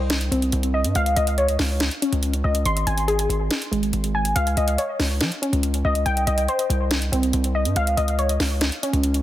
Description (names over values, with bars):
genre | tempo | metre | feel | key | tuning
hip hop, trap | 141 BPM | 4/4 | half-time | unclear | A4 = 440 Hz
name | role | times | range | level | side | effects
warbly dusty pluck | arpeggios | 0.0-9.2 s | Ab3 to C6 | -23 LUFS | left 1 dB | chorus, low-pass filter, digital delay
distorted 808-style bass | bass | 0.0-9.2 s | Ab1 to F3 | -22 LUFS | equal | distortion
trap drum kit | drums | 0.1-9.2 s | hi-hat, snare drum | -26 LUFS | equal | none
room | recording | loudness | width
little or no reverb | dense, heavily limited modern master | -19 LUFS | side -13 dB against mid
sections
0.0-9.2 A section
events
none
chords
0.0 Cm; 1.0 Dbadd9; 2.7 Ab; 4.4 Dbadd9; 6.1 Cm; 7.8 Dbadd9